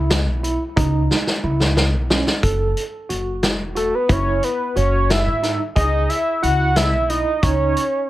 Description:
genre	progressive instrumental, band music in an uneven meter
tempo	180 BPM (eighths)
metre	5/8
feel	straight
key	F# dorian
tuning	A4 = 439 Hz
part	overdriven tine electric piano	arpeggios	0.0-7.8 s	C#4 to A4	-26 LUFS	right 3 dB	medium tremolo, digital delay
part	upright bass	bass	0.0-7.7 s	E1 to G#2	-21 LUFS	equal	none
part	vintage drum kit	drums	0.1-7.9 s	hi-hat, kick drum, snare drum	-20 LUFS	equal	none
part	fat analog lead	melody	3.8-8.1 s	A4 to F#5	-19 LUFS	equal	chorus
room	light reverb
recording	none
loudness	-17 LUFS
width	side -15 dB against mid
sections	0.0-2.4 A section; 2.4-8.1 B section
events	drum fill 1.1-2.4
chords	0.0 C#m7; 2.4 F#7(no3); 5.8 C#m7

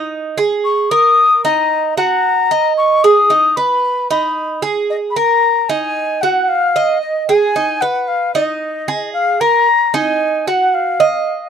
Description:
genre	latin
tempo	113 BPM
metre	4/4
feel	straight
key	Eb minor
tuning	A4 = 440 Hz
part	Cuban tres	arpeggios	0.0-11.5 s	Eb4 to Eb5	-16 LUFS	right 6 dB	none
part	mellow jazz flute	melody	0.6-11.5 s	Eb5 to Eb6	-14 LUFS	left 4 dB	none
room	little or no reverb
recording	dry, close 1970s-style studio recording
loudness	-12 LUFS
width	side -8 dB against mid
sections	0.0-9.7 A section; 9.7-11.5 A section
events	none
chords	0.0 Ab5; 1.2 Ebm; 3.3 Abm; 5.4 Ebmadd9; 7.5 Abm; 9.7 Ebmadd9

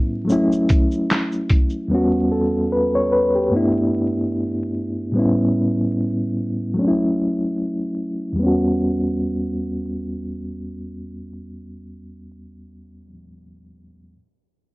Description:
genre	lo-fi hip hop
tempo	74 BPM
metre	4/4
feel	swing 56% on 16ths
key	E dorian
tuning	A4 = 436 Hz
part	reed electric piano	accompaniment	0.0-14.2 s	E2 to C#5	-19 LUFS	equal	fast tremolo, cassette tape, low-pass filter
part	boom bap sampler-style drum kit	drums	0.3-1.9 s	handclaps, hi-hat, kick drum, shaker, snare drum	-18 LUFS	equal	none
room	moderate studio reverb, RT60 0.6 s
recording	vinyl crackle, low-pass filter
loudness	-18 LUFS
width	side -22 dB against mid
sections	0.0-8.4 A section; 8.4-11.6 B section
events	filter sweep 0.0-8.4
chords	0.3 F#m7; 1.9 Em69; 3.5 G6; 5.2 A9; 6.8 F#m7; 8.4 Em69

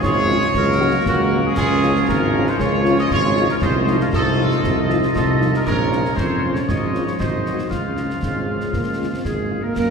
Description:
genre	military-style march for wind band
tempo	117 BPM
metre	2/4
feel	straight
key	Db major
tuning	A4 = 440 Hz
part	dark trumpet section	melody	0.0-9.2 s	F4 to Eb5	-23 LUFS	right 1 dB	none
part	clear woodwind section	second line	0.0-9.9 s	F4 to F5	-25 LUFS	left 1 dB	none
part	mellow trombone section	sustained chords	0.0-9.5 s	F3 to Eb4	-26 LUFS	right 1 dB	none
part	warm tuba	bass	0.0-9.9 s	Ab1 to Gb2	-21 LUFS	right 1 dB	none
part	concert snare drum, concert bass drum and clash cymbals	drums	0.0-9.9 s	none	-26 LUFS	left 1 dB	none
part	mellow French horn section	accompaniment	0.3-9.6 s	F3 to Gb4	-26 LUFS	left 3 dB	none
part	mellow euphonium	second line	8.2-9.9 s	Ab3 to C4	-25 LUFS	right 2 dB	none
room	wet cathedral reverb, RT60 5.1 s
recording	recorded in a church or concert hall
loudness	-16 LUFS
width	side -5 dB against mid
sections	0.0-9.8 A section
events	none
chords	0.0 Db; 0.5 Gb/Db; 1.6 Db; 3.6 F7/C; 5.7 Bbm; 6.7 Db/Ab; 7.2 Ab7; 7.7 Db

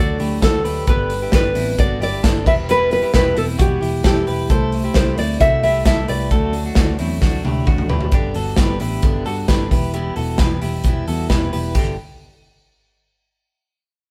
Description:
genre	jangly indie pop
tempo	132 BPM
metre	4/4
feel	straight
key	G major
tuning	A4 = 440 Hz
part	nylon-string guitar	melody	0.0-7.6 s	G4 to E5	-22 LUFS	equal	none
part	picked steel-string acoustic guitar	accompaniment	0.0-11.9 s	G2 to E4	-29 LUFS	equal	none
part	direct-recorded clean electric guitar	arpeggios	0.0-12.0 s	B3 to B4	-29 LUFS	equal	tremolo
part	vintage muted picked electric bass	bass	0.0-12.0 s	E1 to G2	-26 LUFS	equal	none
part	modern studio drum kit	drums	0.2-11.9 s	crash cymbal, hi-hat, kick drum, snare drum, toms	-21 LUFS	equal	none
room	light reverb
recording	band playing live in one room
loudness	-18 LUFS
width	mono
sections	0.0-8.1 A section; 8.1-11.8 B section; 11.8-13.6 C section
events	drum fill 7.2-8.1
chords	0.0 D; 0.9 G; 2.5 Em; 4.5 C6; 6.3 D; 8.1 G; 9.7 Em; 11.8 G5

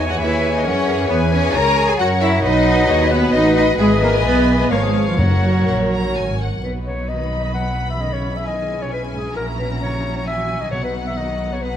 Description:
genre	quick classical-period movement for symphony orchestra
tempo	132 BPM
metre	3/4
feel	rubato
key	B major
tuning	A4 = 441 Hz
part	rich studio violin section	melody	0.0-11.8 s	E#5 to B5	-29 LUFS	left 3 dB	none
part	clear oboe	second line	0.0-6.4 s	G#5 to B5	-29 LUFS	equal	none
part	concert flute	second line	0.0-6.1 s	E#4 to A#5	-24 LUFS	left 2 dB	none
part	rich studio violin section	second line	0.0-11.8 s	D#4 to A#5	-27 LUFS	left 4 dB	none
part	warm clarinet	second line	0.0-11.8 s	G#4 to F#5	-26 LUFS	left 2 dB	none
part	rich studio viola section	accompaniment	0.0-11.8 s	E3 to D#5	-27 LUFS	left 1 dB	none
part	warm bassoon	accompaniment	0.0-6.4 s	E3 to F#3	-26 LUFS	equal	none
part	mellow French horn section	sustained chords	0.0-6.4 s	F#4 to C#5	-26 LUFS	left 4 dB	none
part	rich studio double bass section	bass	0.0-11.8 s	F#1 to F#2	-22 LUFS	right 1 dB	none
part	clear studio cello section	bass	0.1-11.8 s	G#2 to A#4	-22 LUFS	right 2 dB	none
part	timpani	percussion	5.2-5.9, 10.7-11.4 s	F#2 to B2	-22 LUFS	left 1 dB	none
room	moderate scoring stage reverb, RT60 1.8 s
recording	vinyl crackle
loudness	-16 LUFS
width	side -9 dB against mid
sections	0.0-6.6 A section; 6.6-11.8 B section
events	none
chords	0.0 C#m; 1.1 C#m7/E; 2.0 F#; 2.4 B; 3.3 B7/A; 3.8 E/G#; 4.7 C#7/G#; 5.2 F#; 6.6 B; 8.0 C#m7/B; 9.4 F#7/A#; 10.7 B

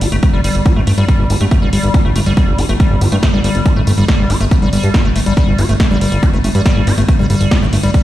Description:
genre	psychedelic trance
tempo	140 BPM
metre	4/4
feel	straight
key	unclear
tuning	A4 = 440 Hz
part	liquid acid bass	riff	0.0-8.0 s	G3 to G4	-17 LUFS	left 1 dB	chorus, auto-pan, cassette tape, sidechain pumping, ping-pong delay
part	fat analog bass	bass	0.0-7.9 s	G1 to G2	-14 LUFS	equal	none
part	techno drum kit	drums	0.0-8.0 s	hi-hat, snare drum	-22 LUFS	equal	overdrive, studio reverb
part	electronic kick drum	drums	0.2-8.0 s	none	-13 LUFS	equal	overdrive, studio reverb
room	light reverb, digital ambience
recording	played on a big sound system in a bare room, stone room reverb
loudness	-10 LUFS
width	side -14 dB against mid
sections	0.0-8.0 A section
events	none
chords	0.0 G5

